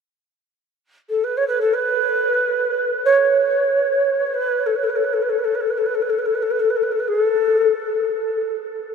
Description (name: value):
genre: world meditative, free-time meditation music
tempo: free time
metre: none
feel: none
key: unclear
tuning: A4 = 440 Hz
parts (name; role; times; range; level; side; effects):
- mellow Native American-style cedar flute; solo; 1.1-8.0 s; A4 to C#5; -17 LUFS; equal; ping-pong delay
room: wet huge ambient reverb, RT60 7.0 s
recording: dreamy mix soaked in reverb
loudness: -17 LUFS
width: side -6 dB against mid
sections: 0.0-8.9 A section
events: none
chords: none